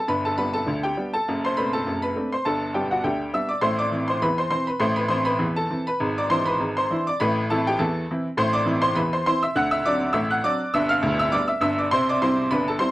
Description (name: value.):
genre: ragtime piano.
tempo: 101 BPM.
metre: 2/4.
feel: swing 55% on 16ths.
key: C major from 8.4 s.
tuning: A4 = 439 Hz.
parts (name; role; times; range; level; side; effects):
bright upright piano; solo; 0.0-12.9 s; D1 to F#6; -20 LUFS; equal; none.
room: light reverb.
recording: dry, close 1970s-style studio recording.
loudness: -20 LUFS.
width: side -17 dB against mid.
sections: 0.0-12.9 A section.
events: none.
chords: 0.0 G; 1.3 D7/F#; 2.5 G; 3.6 Am; 6.0 E7/G#; 7.2 Am; 9.6 D7; 10.7 G7; 11.9 C.